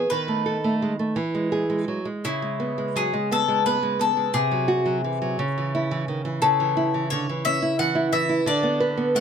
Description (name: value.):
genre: romantic duo for mandolin and classical guitar.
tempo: 58 BPM (dotted quarters).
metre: 6/8.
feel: rubato.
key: unclear.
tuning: A4 = 439 Hz.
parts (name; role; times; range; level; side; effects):
bowl-back mandolin; melody; 0.0-9.2 s; E4 to F#5; -24 LUFS; left 4 dB; none.
nylon-string guitar; accompaniment; 0.0-9.2 s; B#2 to B4; -23 LUFS; right 2 dB; none.
room: light reverb.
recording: close, detailed microphones.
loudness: -21 LUFS.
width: side -7 dB against mid.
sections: 0.0-9.2 A section.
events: none.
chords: 0.1 B7/D#; 1.2 E; 2.2 C#m7; 4.3 G#7/B#; 5.4 C#m; 6.4 A/C#; 8.5 Bm/D.